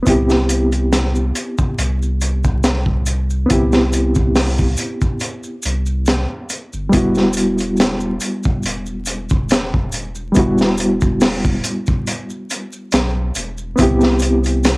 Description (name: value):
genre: trip hop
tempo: 70 BPM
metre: 4/4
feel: swing 54% on 16ths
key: E minor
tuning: A4 = 441 Hz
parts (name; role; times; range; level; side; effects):
- reed electric piano; accompaniment; 0.0-14.8 s; G3 to G4; -18 LUFS; equal; overdrive, fast tremolo, cassette tape, tape echo
- warm sub bass; bass; 0.1-14.8 s; E1 to C2; -20 LUFS; equal; none
- crunchy breakbeat drum kit; drums; 0.1-14.8 s; hi-hat, kick drum, snare drum; -18 LUFS; equal; none
- maracas; percussion; 0.1-14.8 s; none; -30 LUFS; equal; none
room: light reverb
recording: home recording on cassette, vinyl crackle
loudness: -15 LUFS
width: side -27 dB against mid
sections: 0.0-14.8 A section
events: none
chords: 0.1 Cmaj7; 6.9 Emadd9; 13.8 Cmaj7